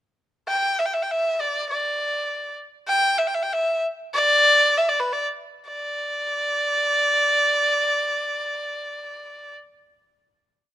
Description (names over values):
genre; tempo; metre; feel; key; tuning
chinese traditional; 69-101 BPM; 2/4; straight; unclear; A4 = 441 Hz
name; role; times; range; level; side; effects
rich erhu; solo; 0.5-9.5 s; B4 to G5; -20 LUFS; equal; none
room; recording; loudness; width
light reverb; close, detailed microphones; -20 LUFS; side -13 dB against mid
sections
0.5-5.7 A section; 5.7-9.1 final note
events
slowing down 2.9-5.7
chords
none